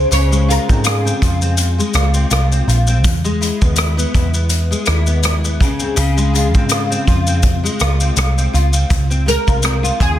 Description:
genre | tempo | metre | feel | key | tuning
indie pop, bedroom pop | 82 BPM | 4/4 | swing 55% on 16ths | Db major | A4 = 440 Hz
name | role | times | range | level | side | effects
oud | melody | 0.0-1.9, 9.3-10.2 s | Ab4 to Db5 | -20 LUFS | right 1 dB | ensemble chorus, ping-pong delay
nylon-string guitar | accompaniment | 0.0-10.2 s | Db3 to F4 | -20 LUFS | left 2 dB | ensemble chorus, vibrato effect
vintage muted picked electric bass | bass | 0.0-10.2 s | Bb1 to Ab2 | -16 LUFS | equal | none
unplugged drum kit | drums | 0.1-10.2 s | hi-hat, kick drum, rim click, shaker | -18 LUFS | equal | none
room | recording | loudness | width
studio ambience | dense, heavily limited modern master | -13 LUFS | side -12 dB against mid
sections
0.0-8.9 A section; 8.9-10.2 B section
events
none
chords
0.0 Dbmaj7; 3.0 E; 5.6 Dbmaj7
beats
| 0.11 0.85 1.58 2.31 | 3.04 3.78 4.51 5.24 | 5.97 6.71 7.44 8.17 | 8.90 9.63

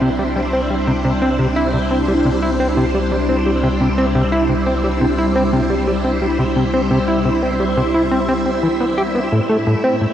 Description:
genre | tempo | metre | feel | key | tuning
ambient, sequencer-driven space music | 87 BPM | 4/4 | straight | unclear | A4 = 440 Hz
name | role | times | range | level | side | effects
phased string machine | sustained chords | 0.0-10.1 s | G3 to E5 | -19 LUFS | equal | ensemble chorus, phaser
plucky analog bass | riff | 0.0-10.1 s | A2 to G4 | -18 LUFS | equal | tape echo
warm sub bass | bass | 0.0-9.3 s | C2 | -24 LUFS | equal | transformer saturation
bubbling stepped-filter texture | texture | 0.0-10.1 s | C4 to E5 | -27 LUFS | right 2 dB | chorus, built-in reverb
room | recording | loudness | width
wet huge ambient reverb, RT60 7.6 s | worn, warbling old tape, cassette tape, warbly pitch drift | -14 LUFS | side -10 dB against mid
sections
0.0-9.3 A section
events
none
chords
0.0 Cadd9; 9.3 Am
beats
0.36 | 1.05 1.74 2.43 3.12 | 3.81 4.50 5.18 5.88 | 6.56 7.25 7.94 8.63 | 9.32 10.01

